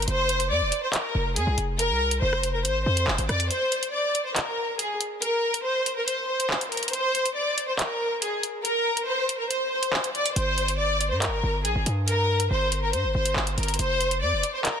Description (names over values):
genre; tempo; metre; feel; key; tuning
hip hop, drill; 140 BPM; 4/4; half-time; unclear; A4 = 441 Hz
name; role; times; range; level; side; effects
warm studio violin section; melody; 0.0-14.8 s; Ab4 to D5; -25 LUFS; left 1 dB; ping-pong delay
hard-hitting 808-style bass; bass; 0.0-3.5, 10.4-14.4 s; F1 to G2; -26 LUFS; equal; none
drill drum kit; drums; 0.0-14.7 s; handclaps, hi-hat, rim click; -28 LUFS; equal; none
room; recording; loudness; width
light reverb; dense, heavily limited modern master; -23 LUFS; side -7 dB against mid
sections
0.0-3.5 A section; 3.5-14.8 B section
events
kick muted 3.5-10.4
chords
0.1 F5; 3.5 N.C.; 10.4 Gm; 13.8 F5